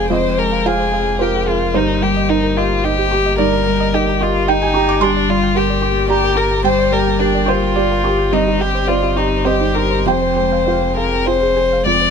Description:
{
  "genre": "neoclassical piano and strings",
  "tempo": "108 BPM",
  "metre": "3/4",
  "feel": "rubato",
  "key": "F dorian",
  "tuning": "A4 = 439 Hz",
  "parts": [
    { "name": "rich violin", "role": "melody", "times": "0.0-12.1 s", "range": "D4 to D5", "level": "-18 LUFS", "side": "left 4 dB", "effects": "none" },
    { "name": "felt-muted upright piano", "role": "accompaniment", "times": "0.0-12.1 s", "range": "F2 to D6", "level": "-18 LUFS", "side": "right 1 dB", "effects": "none" },
    { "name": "warm chamber string section", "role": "sustained chords", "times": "0.0-12.1 s", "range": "Ab3 to G5", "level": "-27 LUFS", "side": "right 1 dB", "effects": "none" },
    { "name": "soft round pluck", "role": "arpeggios", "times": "0.0-12.1 s", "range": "C4 to G5", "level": "-24 LUFS", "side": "right 11 dB", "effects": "chorus, slapback echo" },
    { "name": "warm sub bass", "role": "bass", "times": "0.0-12.1 s", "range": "F1 to G1", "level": "-22 LUFS", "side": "equal", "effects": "none" }
  ],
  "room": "little or no reverb",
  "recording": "close, detailed microphones",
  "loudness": "-13 LUFS",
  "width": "side -6 dB against mid",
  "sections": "0.0-11.9 A section",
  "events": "none",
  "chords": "0.0 Fmadd9; 1.8 Eb/G; 5.0 Gm; 8.3 Cm/G; 10.1 Fm"
}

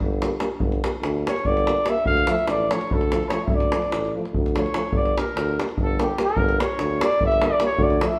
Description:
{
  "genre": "balkan folk, Balkan brass band",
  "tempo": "292 BPM (eighths)",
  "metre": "7/8",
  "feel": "straight",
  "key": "G dorian sharp4",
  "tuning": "A4 = 440 Hz",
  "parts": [
    { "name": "warm tuba", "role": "bass", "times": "0.0-8.0 s", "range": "G1 to D2", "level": "-28 LUFS", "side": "equal", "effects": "none" },
    { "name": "davul", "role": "percussion", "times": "0.0-8.1 s", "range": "none", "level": "-27 LUFS", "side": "equal", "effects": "none" },
    { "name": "warm euphonium", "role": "accompaniment", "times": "0.2-8.1 s", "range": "A3 to Bb3", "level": "-34 LUFS", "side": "equal", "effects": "none" },
    { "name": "warm euphonium", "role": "accompaniment", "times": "0.2-8.1 s", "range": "F3 to G3", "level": "-35 LUFS", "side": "equal", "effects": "none" },
    { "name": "dark cornet", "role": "melody", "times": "1.3-8.2 s", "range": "G4 to F5", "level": "-26 LUFS", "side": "equal", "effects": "none" }
  ],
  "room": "wet large studio reverb, RT60 1.2 s",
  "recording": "band playing live in one room",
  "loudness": "-22 LUFS",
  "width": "mono",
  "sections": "0.0-8.2 A section",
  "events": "cornet solo 0.0-8.2",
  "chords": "0.0 Gm; 2.1 Dm; 4.9 Gm"
}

